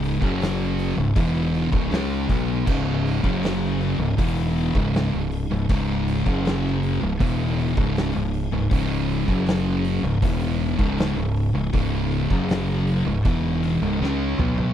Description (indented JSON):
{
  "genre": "stoner and doom metal",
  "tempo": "79 BPM",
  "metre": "4/4",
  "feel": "straight",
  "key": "C# minor",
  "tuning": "A4 = 435 Hz",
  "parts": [
    { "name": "tonewheel organ", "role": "sustained chords", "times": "0.0-14.7 s", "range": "C#3 to G#4", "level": "-34 LUFS", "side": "right 2 dB", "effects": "slow rotary speaker, overdrive, chorus vibrato" },
    { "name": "thick fuzz guitar", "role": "riff", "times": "0.0-14.7 s", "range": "C#2 to C#4", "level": "-25 LUFS", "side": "left 8 dB", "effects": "distortion" },
    { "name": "thick fuzz guitar", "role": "riff", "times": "0.0-14.7 s", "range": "C#2 to C#4", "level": "-26 LUFS", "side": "right 8 dB", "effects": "distortion" },
    { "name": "growling fingered electric bass", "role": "bass", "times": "0.0-14.7 s", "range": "C#1 to C#2", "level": "-27 LUFS", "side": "equal", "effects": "overdrive" },
    { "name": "oversized low-tuned drum kit", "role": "drums", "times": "0.0-14.7 s", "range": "crash cymbal, hi-hat, kick drum, snare drum, toms", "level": "-26 LUFS", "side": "equal", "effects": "none" }
  ],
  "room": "little or no reverb",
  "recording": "dry, close 1970s-style studio recording",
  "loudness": "-20 LUFS",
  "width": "side -10 dB against mid",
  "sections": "0.0-14.7 A section",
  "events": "drum fill 14.0-14.7",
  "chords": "0.2 F#5; 1.0 C#m; 3.2 F#5; 4.0 C#m; 6.3 F#5; 7.0 C#m; 9.3 F#5; 10.0 C#m; 12.3 F#5; 13.1 C#m"
}